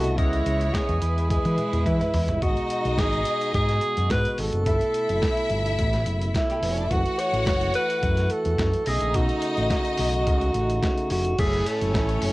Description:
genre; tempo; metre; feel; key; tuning
disco; 107 BPM; 4/4; straight; F# dorian; A4 = 440 Hz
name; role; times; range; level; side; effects
breathy alto saxophone; melody; 0.0-12.3 s; E4 to C#5; -26 LUFS; right 1 dB; cassette tape
clear studio string section; second line; 0.0-12.3 s; G3 to F#5; -30 LUFS; equal; cassette tape
percussive tonewheel organ; sustained chords; 0.0-12.3 s; A2 to D#5; -32 LUFS; equal; slow rotary speaker, cassette tape
overdriven fingered electric bass; bass; 0.0-12.3 s; E#1 to E3; -25 LUFS; equal; none
dusty soul sampler-style drum kit; drums; 0.0-12.3 s; crash cymbal, hi-hat, kick drum, snare drum, toms; -27 LUFS; equal; cassette tape
room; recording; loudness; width
digital ambience; home recording on cassette; -21 LUFS; side -19 dB against mid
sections
0.0-2.4 A section; 2.4-11.4 B section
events
drum fill 1.3-2.4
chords
0.2 C#m9; 1.0 E; 2.4 G#m7; 4.7 G69; 6.9 F#m7; 8.9 B9; 11.4 F#m7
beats
| 0.18 0.74 1.30 1.86 | 2.42 2.98 3.54 4.10 | 4.66 5.22 5.79 6.35 | 6.91 7.47 8.03 8.59 | 9.15 9.71 10.27 10.83 | 11.39 11.95

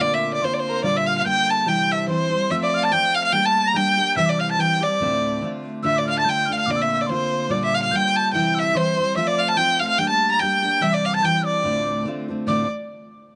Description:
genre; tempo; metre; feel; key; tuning
celtic folk, Celtic polka; 144 BPM; 2/4; swing 55% on 8ths; D minor; A4 = 439 Hz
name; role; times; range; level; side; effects
warm violin; melody; 0.0-12.7 s; Bb4 to Bb5; -23 LUFS; equal; none
mellow hollow tin whistle; second line; 0.0-12.7 s; C6 to Bb6; -28 LUFS; equal; none
picked steel-string acoustic guitar; accompaniment; 0.0-12.7 s; D2 to G4; -27 LUFS; equal; none
room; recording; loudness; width
little or no reverb; nothing above 10.3 kHz; -21 LUFS; mono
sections
0.0-5.8 A section; 5.8-12.5 A section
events
none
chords
0.0 Bbadd9; 0.8 Gm7/Bb; 1.7 C; 2.5 F; 3.3 Gm; 4.2 C; 5.0 Dm7; 5.8 Dm; 6.7 Bbadd9; 7.5 Gm7/Bb; 8.3 C; 9.2 F; 10.0 Gm; 10.8 C; 11.6 Dm7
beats
| 0.00 0.41 | 0.83 1.25 | 1.67 2.09 | 2.50 2.92 | 3.34 3.75 | 4.17 4.59 | 5.00 5.42 | 5.84 6.25 | 6.67 7.08 | 7.50 7.91 | 8.33 8.74 | 9.16 9.57 | 9.98 10.40 | 10.81 11.22 | 11.64 12.05 | 12.46

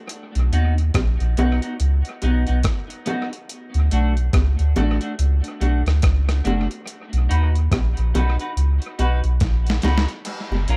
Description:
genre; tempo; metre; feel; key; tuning
roots reggae; 71 BPM; 4/4; swing 60% on 16ths; unclear; A4 = 440 Hz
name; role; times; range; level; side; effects
dusty soul sampler-style drum kit; drums; 0.1-10.8 s; crash cymbal, hi-hat, kick drum, rim click, snare drum; -27 LUFS; equal; overdrive, dub echo
soft dub sub bass; bass; 0.4-10.8 s; F#1 to D#2; -20 LUFS; equal; none
clean electric guitar; accompaniment; 0.5-10.8 s; A3 to B4; -30 LUFS; equal; subtle chorus, tape echo
bongos; percussion; 1.0-10.7 s; none; -30 LUFS; equal; none
room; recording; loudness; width
little or no reverb; echo-heavy mix; -20 LUFS; mono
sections
0.0-10.3 A section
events
drum fill 9.4-10.3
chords
0.1 B; 3.5 D; 6.9 B; 10.3 F#maj7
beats
| 0.10 0.95 1.80 2.64 | 3.49 4.33 5.18 6.03 | 6.87 7.72 8.57 9.41 | 10.26

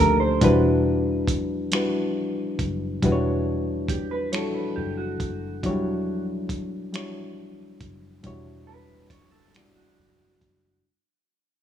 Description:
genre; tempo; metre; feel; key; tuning
slow six-eight R&B; 46 BPM (dotted quarters); 6/8; straight; unclear; A4 = 440 Hz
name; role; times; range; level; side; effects
mellow electric guitar; second line; 0.0-10.8 s; F#4 to C#5; -28 LUFS; right 5 dB; lush chorus
reed electric piano; accompaniment; 0.0-10.9 s; F#3 to D5; -24 LUFS; left 2 dB; none
vintage muted fingered electric bass; bass; 0.0-10.8 s; E1 to D2; -27 LUFS; right 1 dB; none
dusty soul sampler-style drum kit; drums; 0.4-10.6 s; finger snaps, hi-hat, kick drum; -27 LUFS; right 1 dB; none
room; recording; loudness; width
light reverb; small room ambience; -22 LUFS; side -9 dB against mid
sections
0.4-10.8 A section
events
fade-out 0.4-10.8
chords
0.4 Em9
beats
| 0.41 1.72 | 3.02 4.33 | 5.63 6.93 | 8.24 9.54

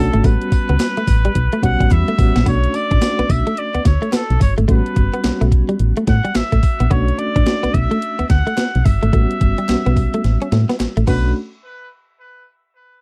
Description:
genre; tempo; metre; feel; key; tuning
R&B, new jack swing; 108 BPM; 4/4; swing 62% on 16ths; B minor; A4 = 440 Hz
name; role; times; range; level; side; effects
trumpet with straight mute; melody; 0.0-11.3 s; A4 to F#5; -26 LUFS; equal; tape echo
FM electric piano with tremolo; accompaniment; 0.0-11.4 s; G3 to B5; -26 LUFS; equal; none
solid FM bass; bass; 0.0-11.3 s; G1 to A2; -19 LUFS; equal; none
direct-recorded clean electric guitar; riff; 0.1-11.2 s; G3 to D4; -24 LUFS; equal; analog chorus
gated 80s digital drum machine; drums; 0.1-11.2 s; crash cymbal, hi-hat, kick drum, snare drum, tambourine; -20 LUFS; equal; gated reverb, gated reverb snare
group handclap; percussion; 0.8-11.3 s; none; -39 LUFS; equal; none
room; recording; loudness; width
little or no reverb; dry, close 1970s-style studio recording; -16 LUFS; mono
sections
0.0-2.5 A section; 2.5-11.4 B section; 11.4-13.0 C section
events
drum fill 1.4-2.5, 10.2-11.4; FM electric piano fill 1.4-2.5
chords
0.2 A13; 2.5 Bm9; 4.7 A13; 6.9 Bm9; 9.1 A13; 11.1 Bm9; 11.4 N.C.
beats
| 0.24 0.80 1.35 1.91 | 2.46 3.02 3.58 4.13 | 4.69 5.24 5.80 6.35 | 6.91 7.46 8.02 8.58 | 9.13 9.69 10.24 10.80 | 11.35

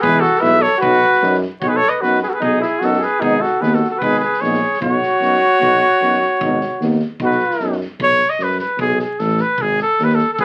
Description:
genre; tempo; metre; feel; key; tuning
balkan folk, Balkan brass band; 151 BPM; 2/4; swing 55% on 16ths; B mixolydian; A4 = 440 Hz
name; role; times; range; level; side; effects
warm trumpet; melody; 0.0-10.4 s; G#4 to E5; -19 LUFS; equal; none
warm flugelhorn; second line; 0.0-7.8, 10.4 s; D#4 to B4; -21 LUFS; equal; none
mellow euphonium; accompaniment; 0.0-7.8 s; F#3 to B3; -27 LUFS; equal; none
warm French horn; accompaniment; 0.0-7.8 s; D#4 to E4; -28 LUFS; equal; none
warm tuba; bass; 0.0-10.4 s; G#1 to F#2; -24 LUFS; equal; none
soft-mallet drum kit; percussion; 0.0-10.4 s; kick drum, snare drum; -36 LUFS; equal; none
room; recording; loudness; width
moderate club reverb, RT60 0.5 s; very old 78 rpm record, vinyl crackle; -16 LUFS; mono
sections
0.0-1.6 A section; 1.6-8.0 B section; 8.0-10.4 B section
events
none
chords
0.0 E; 0.8 B; 3.2 G#m; 4.8 B; 6.4 G#m; 7.2 B; 8.0 B5; 9.6 G#5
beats
| 0.03 0.43 | 0.83 1.22 | 1.62 2.02 | 2.42 2.82 | 3.22 3.62 | 4.01 4.41 | 4.81 5.21 | 5.61 6.01 | 6.41 6.81 | 7.21 7.61 | 8.00 8.40 | 8.80 9.20 | 9.60 9.99 | 10.39

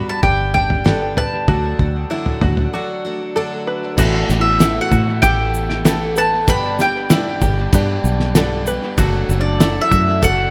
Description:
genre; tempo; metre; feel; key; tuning
indie folk with a building arrangement; 96 BPM; 4/4; straight; unclear; A4 = 441 Hz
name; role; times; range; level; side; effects
mandolin; melody; 0.0-10.5 s; D5 to B5; -22 LUFS; equal; dub echo
bright concert grand piano; accompaniment; 0.0-10.5 s; F#1 to G5; -32 LUFS; equal; dub echo
picked twelve-string acoustic guitar; accompaniment; 0.0-10.5 s; G2 to A4; -28 LUFS; equal; dub echo
open-back banjo; arpeggios; 0.0-10.5 s; E4 to B4; -27 LUFS; equal; none
fingered electric bass; bass; 0.0-10.5 s; F#1 to A2; -22 LUFS; equal; none
cloth-damped thuddy drum kit; drums; 0.2-10.4 s; crash cymbal, kick drum, ride cymbal, snare drum, toms; -21 LUFS; equal; none
egg shaker; percussion; 4.0-10.4 s; none; -32 LUFS; equal; none
felt-muted upright piano; second line; 4.4-10.5 s; D4 to B4; -30 LUFS; equal; dub echo
room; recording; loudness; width
light reverb, small room ambience; echo-heavy mix; -17 LUFS; mono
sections
0.0-4.0 A section; 4.0-10.5 B section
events
break 2.7-4.0; grand piano fill 7.7-9.0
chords
0.0 G; 1.5 D; 4.0 Asus2; 6.5 G; 9.0 D/F#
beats
0.23 0.85 | 1.48 2.10 2.73 3.35 | 3.98 4.61 5.23 5.85 | 6.48 7.10 7.73 8.35 | 8.98 9.60 10.23

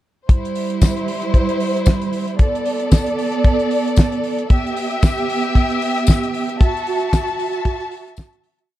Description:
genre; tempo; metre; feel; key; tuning
disco; 114 BPM; 4/4; swing 56% on 16ths; unclear; A4 = 439 Hz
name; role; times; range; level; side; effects
warm studio string section; second line; 0.3-8.7 s; G3 to A5; -19 LUFS; right 1 dB; analog delay
damped 70s drum kit; drums; 0.3-8.7 s; hi-hat, kick drum, snare drum; -15 LUFS; equal; none
tambourine; percussion; 0.8-8.3 s; none; -30 LUFS; left 19 dB; none
room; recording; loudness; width
small room ambience; dark, warm production; -16 LUFS; side -14 dB against mid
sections
0.3-8.7 breakdown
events
fade-out 6.6-8.7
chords
0.3 C; 2.4 Bm7; 4.5 Em; 6.6 F#m7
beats
| 0.29 0.82 1.34 1.87 | 2.40 2.92 3.45 3.98 | 4.50 5.03 5.55 6.08 | 6.61 7.13 7.66 8.18

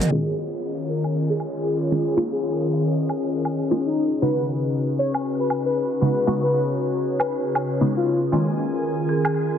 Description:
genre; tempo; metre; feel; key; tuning
deep house; 117 BPM; 4/4; swing 61% on 16ths; Eb minor; A4 = 437 Hz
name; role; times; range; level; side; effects
marimba with hard mallets; melody; 0.0-0.1, 9.1-9.4 s; Ab4 to Bb4; -30 LUFS; equal; dub echo
hollow soft pad; sustained chords; 0.0-9.6 s; Db3 to Db5; -26 LUFS; equal; ensemble chorus
deep house drum kit; drums; 0.0-9.3 s; hi-hat, shaker, toms, woodblock; -28 LUFS; right 1 dB; overdrive
rich chamber violin section; texture; 0.0-0.1, 8.3-9.6 s; F5 to Ab5; -36 LUFS; right 1 dB; none
warbly tape-like pad; texture; 0.0-9.6 s; Cb4 to Eb5; -28 LUFS; left 3 dB; chorus, built-in reverb
warm velvety synth lead; melody; 0.1-8.2 s; Eb4 to Db5; -26 LUFS; left 2 dB; chorus, tape echo
filtered dub chord stab; stabs; 0.1-9.6 s; Db3 to Gb4; -24 LUFS; equal; phaser, ensemble chorus, vintage 12-bit sampler grit
downlifter; sound effects; 0.2-4.2 s; none; -42 LUFS; equal; none
room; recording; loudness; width
moderate lush hall reverb, RT60 2.0 s; heavily compressed radio sound, multiband compression, low-pass filter; -20 LUFS; side -8 dB against mid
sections
0.1-9.6 A section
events
filter sweep 0.1-9.6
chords
0.1 Eb9sus4; 4.2 Db9sus4; 8.3 Eb9sus4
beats
| 0.12 0.63 1.14 1.66 | 2.17 2.68 3.19 3.71 | 4.22 4.73 5.25 5.76 | 6.27 6.78 7.30 7.81 | 8.32 8.84 9.35

